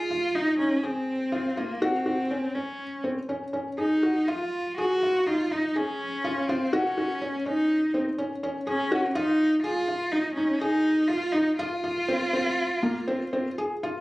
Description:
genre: contemporary instrumental, contemporary.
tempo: 123 BPM.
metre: 5/4.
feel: straight.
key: F phrygian.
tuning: A4 = 440 Hz.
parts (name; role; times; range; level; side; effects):
dark cello; melody; 0.0-13.5 s; Bb3 to Gb4; -26 LUFS; equal; none.
felt-muted upright piano; arpeggios; 0.1-14.0 s; Bb3 to Ab4; -28 LUFS; equal; none.
room: moderate studio reverb, RT60 0.5 s.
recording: recorded on a phone in the room, club reverb, compression.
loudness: -24 LUFS.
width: side -20 dB against mid.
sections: 0.0-14.0 A section.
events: none.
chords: 0.0 Fm7; 1.8 Gb5; 4.3 Fm7; 6.7 Gb5; 9.2 Fm7; 11.6 F5.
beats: 0.35 0.83 1.32 | 1.81 2.30 2.79 3.29 3.78 | 4.28 4.78 5.27 5.76 6.25 | 6.73 7.22 7.71 8.19 8.67 | 9.16 9.64 10.13 10.61 11.10 | 11.59 12.09 12.58 13.08 13.58.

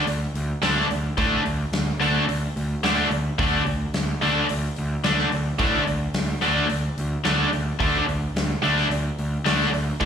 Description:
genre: hard rock.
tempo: 109 BPM.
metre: 4/4.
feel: straight.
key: unclear.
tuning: A4 = 440 Hz.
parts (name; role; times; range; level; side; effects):
scooped high-gain guitar; riff; 0.0-10.1 s; D3 to D4; -25 LUFS; left 11 dB; distortion, slapback echo.
fuzz picked electric bass; bass; 0.1-10.1 s; D2 to A2; -25 LUFS; equal; overdrive.
huge arena drum kit; drums; 0.1-10.1 s; hi-hat, kick drum, snare drum; -29 LUFS; left 1 dB; none.
tight distorted guitar; riff; 0.6-10.1 s; D3 to D4; -26 LUFS; right 9 dB; distortion, slapback echo.
room: light reverb, small room ambience.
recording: live gig heard through the venue's PA, club reverb.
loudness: -20 LUFS.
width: side -7 dB against mid.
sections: 0.0-10.1 A section.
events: none.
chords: 0.0 D5.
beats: 0.07 0.63 | 1.18 1.73 2.28 2.84 | 3.39 3.94 4.49 5.04 | 5.60 6.15 6.70 7.25 | 7.80 8.36 8.91 9.46 | 10.01.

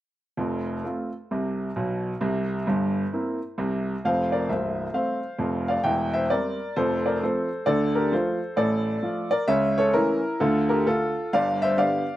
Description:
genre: jazz, stride piano.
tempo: 132 BPM.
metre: 4/4.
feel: swing 63% on 8ths.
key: F major.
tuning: A4 = 440 Hz.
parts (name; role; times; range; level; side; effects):
warm grand piano; solo; 0.4-12.2 s; C1 to G5; -22 LUFS; equal; slapback echo.
room: light reverb.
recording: recorded outdoors, with no room sound.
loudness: -22 LUFS.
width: side -14 dB against mid.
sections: 0.4-4.0 A section; 4.0-12.2 B section.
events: none.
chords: 0.4 F; 2.2 C7; 4.0 F; 5.8 C/E; 6.8 F; 7.7 Dm; 9.5 A/C#; 10.4 Dm; 11.3 G7.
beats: | 0.37 0.82 1.28 1.74 | 2.19 2.65 3.11 3.56 | 4.02 4.47 4.93 5.38 | 5.84 6.30 6.75 7.21 | 7.66 8.12 8.57 9.03 | 9.48 9.94 10.40 10.85 | 11.31 11.76.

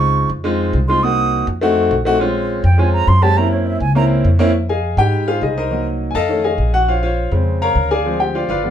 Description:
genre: jazz.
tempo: 205 BPM.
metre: 4/4.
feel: straight.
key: F minor.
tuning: A4 = 440 Hz.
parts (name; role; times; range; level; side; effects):
concert flute; melody; 0.0-4.0 s; Db5 to Eb6; -18 LUFS; right 5 dB; none.
clear grand piano; accompaniment; 0.0-8.7 s; Db3 to Bb5; -17 LUFS; left 1 dB; none.
upright bass; bass; 0.0-8.7 s; G1 to Ab2; -17 LUFS; equal; none.
room: moderate studio ambience, RT60 0.5 s.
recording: band playing live in one room.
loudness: -14 LUFS.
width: side -9 dB against mid.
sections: 0.0-4.5 A section; 4.5-8.7 A section.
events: flute solo 0.0-4.5; grand piano solo 4.5-8.7.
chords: 0.0 Dbmaj7; 1.0 Cm7b5; 1.6 F7b9; 2.2 Bbm9; 3.4 Gb7#11; 4.5 Fm7; 5.7 Cm7b5; 6.3 F7alt; 6.9 Bbm9; 8.1 G7b9.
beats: 0.15 0.45 0.74 | 1.03 1.33 1.62 1.91 | 2.20 2.50 2.79 3.08 | 3.37 3.67 3.96 4.25 | 4.54 4.84 5.13 5.42 | 5.71 6.00 6.30 6.59 | 6.88 7.17 7.47 7.76 | 8.05 8.34 8.64.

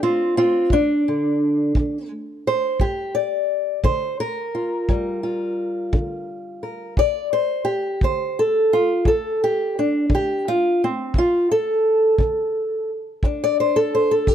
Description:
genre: acoustic country blues, solo or duo.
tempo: 58 BPM (dotted quarters).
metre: 12/8.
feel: straight.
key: D minor.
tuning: A4 = 440 Hz.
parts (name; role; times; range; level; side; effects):
fingerpicked old ladder-braced acoustic guitar; melody; 0.0-14.3 s; D2 to D5; -19 LUFS; equal; none.
kick drum; drums; 0.7-14.3 s; none; -20 LUFS; equal; none.
room: little or no reverb.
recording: dry, close 1970s-style studio recording.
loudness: -18 LUFS.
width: side -9 dB against mid.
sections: 0.0-14.3 A section.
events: steel-string acoustic guitar solo 0.0-14.3.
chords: 0.0 Gm7; 7.0 Dm.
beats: 0.70 1.75 | 2.79 3.84 4.88 5.93 | 6.97 8.02 9.06 10.10 | 11.14 12.19 13.23 14.27.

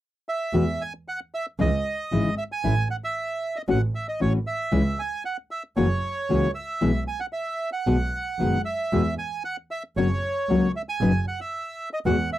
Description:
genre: tango.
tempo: 115 BPM.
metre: 4/4.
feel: rubato.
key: E major.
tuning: A4 = 440 Hz.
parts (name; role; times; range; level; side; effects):
bandoneon; melody; 0.3-12.4 s; C#5 to G#5; -28 LUFS; right 3 dB; none.
nylon-string guitar; accompaniment; 0.5-12.2 s; B2 to B4; -23 LUFS; left 4 dB; none.
clear double bass; bass; 0.5-12.3 s; F#1 to E2; -26 LUFS; right 2 dB; none.
room: light reverb.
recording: dry, close 1970s-style studio recording.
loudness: -23 LUFS.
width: side -14 dB against mid.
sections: 0.5-12.4 A section.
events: none.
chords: 0.0 N.C.; 0.5 Eadd9; 1.6 C#madd9; 2.6 A5; 3.7 F#m7/A; 4.7 C#m; 5.8 F#7; 6.8 E/B; 7.9 B6; 8.9 Eadd9; 10.0 F#; 11.0 N.C..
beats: 0.01 | 0.54 1.06 1.59 2.12 | 2.64 3.17 3.69 4.21 | 4.73 5.25 5.78 6.30 | 6.82 7.34 7.87 8.40 | 8.93 9.45 9.98 10.50 | 11.02 11.54 12.06.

